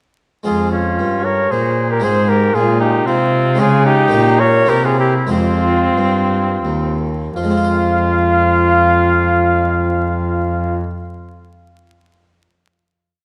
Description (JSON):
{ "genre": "classical, baroque-style sonata movement with continuo", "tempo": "82-118 BPM", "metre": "3/4", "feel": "rubato", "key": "F minor", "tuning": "A4 = 438 Hz", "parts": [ { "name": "harpsichord", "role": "accompaniment", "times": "0.4-11.0 s", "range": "Eb2 to C5", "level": "-24 LUFS", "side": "equal", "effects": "none" }, { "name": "warm trumpet", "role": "melody", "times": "0.5-10.8 s", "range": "F4 to Db5", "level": "-19 LUFS", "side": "equal", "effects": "none" }, { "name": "clear oboe", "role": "second line", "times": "0.5-10.8 s", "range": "C4 to F5", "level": "-22 LUFS", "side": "equal", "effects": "none" }, { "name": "warm cello", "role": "bass", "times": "0.5-10.8 s", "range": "Eb2 to Db3", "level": "-20 LUFS", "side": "equal", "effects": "none" } ], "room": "moderate concert hall reverb, RT60 2.2 s", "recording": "vinyl crackle", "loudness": "-15 LUFS", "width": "mono", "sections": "0.5-7.4 A section; 7.4-11.6 final chord", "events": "slowing down 2.8-7.4", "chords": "0.5 Fm; 2.0 Fm/Ab; 3.6 Db; 4.1 Gdim/Bb; 4.7 C7; 5.3 Fm", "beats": "| 0.46 0.99 1.52 | 2.04 2.56 3.07 | 3.59 4.12 4.69 | 5.30 5.95 6.64 | 7.36 8.06 8.78 | 9.48 10.18 10.88" }